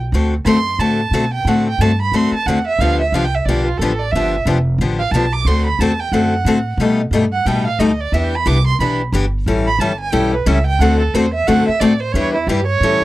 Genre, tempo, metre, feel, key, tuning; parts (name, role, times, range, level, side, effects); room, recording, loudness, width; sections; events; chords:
acoustic string swing (jazz manouche); 180 BPM; 4/4; swing 60% on 8ths; D mixolydian; A4 = 439 Hz
upright bass; bass; 0.0-13.0 s; F1 to B2; -19 LUFS; right 1 dB
picked steel-string acoustic guitar; accompaniment; 0.1-13.0 s; B2 to B4; -16 LUFS; left 3 dB
rich violin; second line; 0.5-13.0 s; E4 to D6; -20 LUFS; right 4 dB
light reverb; dry, close 1970s-style studio recording; -14 LUFS; side -16 dB against mid
0.0-13.0 A section
violin solo 0.0-13.0
0.1 D7; 2.8 G7; 5.5 D7; 6.8 B7alt; 8.1 Em7; 9.5 A7; 10.8 D7; 12.1 Em7